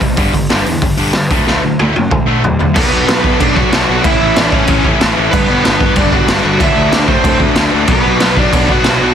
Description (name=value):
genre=punk rock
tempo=187 BPM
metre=4/4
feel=straight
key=unclear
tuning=A4 = 440 Hz
part: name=distorted electric guitar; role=riff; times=0.0-9.1 s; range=G2 to E4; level=-16 LUFS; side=left 1 dB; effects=distortion
part: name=fuzz picked electric bass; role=bass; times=0.0-9.1 s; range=G1 to G2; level=-19 LUFS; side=equal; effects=overdrive
part: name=raw garage drum kit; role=drums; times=0.0-8.9 s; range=crash cymbal, hi-hat, kick drum, snare drum, toms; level=-13 LUFS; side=equal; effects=none
part: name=thick fuzz guitar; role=riff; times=2.7-9.1 s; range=G2 to D4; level=-18 LUFS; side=equal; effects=distortion
part: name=cranked stack guitar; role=melody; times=2.8-9.1 s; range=B3 to F#5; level=-16 LUFS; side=right 1 dB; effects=overdrive
room=light reverb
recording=dense, heavily limited modern master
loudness=-9 LUFS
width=side -8 dB against mid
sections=0.0-2.8 A section; 2.8-9.1 B section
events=drum fill 1.5-2.8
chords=0.2 G5; 1.3 D; 2.8 Bm; 4.0 A; 5.3 G; 6.6 D; 7.9 Bm